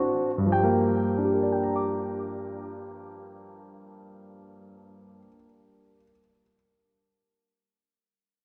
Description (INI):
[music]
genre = solo jazz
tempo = 92 BPM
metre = 4/4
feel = swing 66% on 8ths, rubato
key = G minor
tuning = A4 = 439 Hz
[part]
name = warm concert grand piano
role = solo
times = 0.0-6.5 s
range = G2 to D6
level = -27 LUFS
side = equal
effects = delay
[sound]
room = wet plate reverb, RT60 3.4 s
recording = dreamy mix soaked in reverb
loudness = -26 LUFS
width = mono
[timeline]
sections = 0.5-5.7 A section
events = none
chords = 0.0 D7; 0.5 Gm7